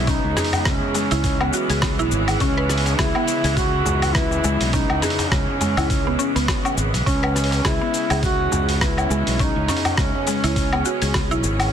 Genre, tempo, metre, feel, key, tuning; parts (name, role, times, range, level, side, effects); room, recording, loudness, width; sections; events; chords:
organic downtempo; 103 BPM; 4/4; swing 57% on 16ths; C# minor; A4 = 439 Hz
warm duduk; melody; 0.0-11.4 s; C#4 to F#4; -25 LUFS; equal; tape echo
bright symphonic string section; sustained chords; 0.0-11.7 s; C#3 to C#4; -27 LUFS; right 2 dB; sidechain pumping
mallet-like synth pluck; arpeggios; 0.0-11.7 s; G#3 to B4; -26 LUFS; equal; chorus, cassette tape, ping-pong delay
fretless electric bass; bass; 0.0-11.7 s; G#1 to C#2; -23 LUFS; equal; sidechain pumping
dusty soul sampler-style drum kit; drums; 0.1-11.7 s; hi-hat, rim click, shaker, woodblock; -24 LUFS; left 1 dB; overdrive
electronic kick drum; drums; 0.1-11.3 s; -24 LUFS; equal; overdrive
darbuka; percussion; 0.4-10.2 s; -31 LUFS; equal
light reverb, digital ambience; dense, heavily limited modern master; -18 LUFS; side -8 dB against mid
0.0-11.7 A section
0.0 C#m7